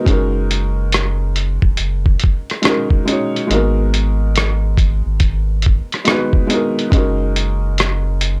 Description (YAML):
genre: lo-fi hip hop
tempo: 70 BPM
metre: 4/4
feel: swing 64% on 16ths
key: unclear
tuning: A4 = 440 Hz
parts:
  - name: felt-muted upright piano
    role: accompaniment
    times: 0.0-8.4 s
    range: G#3 to C#5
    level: -22 LUFS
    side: equal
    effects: none
  - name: saturated sub bass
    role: bass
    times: 0.1-8.4 s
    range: D#1 to G#1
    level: -20 LUFS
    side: equal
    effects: transformer saturation
  - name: lo-fi sampler-style drum kit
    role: drums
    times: 0.1-8.4 s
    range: hi-hat, kick drum, rim click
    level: -18 LUFS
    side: equal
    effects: none
room: little or no reverb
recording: dry, gritty hardware recording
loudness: -16 LUFS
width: mono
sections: 0.1-8.4 A section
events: none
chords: 0.1 F#69; 3.5 G#m7; 6.9 F#69